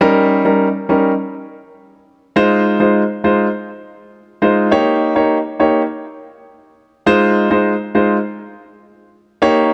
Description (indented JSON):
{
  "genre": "dancehall",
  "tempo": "102 BPM",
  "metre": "4/4",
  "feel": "straight",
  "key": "F minor",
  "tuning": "A4 = 440 Hz",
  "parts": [
    { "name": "warm baby grand piano", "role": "solo", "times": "0.0-9.7 s", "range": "G3 to Db5", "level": "-15 LUFS", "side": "equal", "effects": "analog delay" }
  ],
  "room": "light reverb, small room ambience",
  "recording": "echo-heavy mix",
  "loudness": "-15 LUFS",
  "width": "mono",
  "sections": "0.0-2.4 A section; 2.4-9.7 B section",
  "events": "none",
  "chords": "0.0 Eb7; 2.4 Fm7; 4.7 Eb7; 7.1 Fm7"
}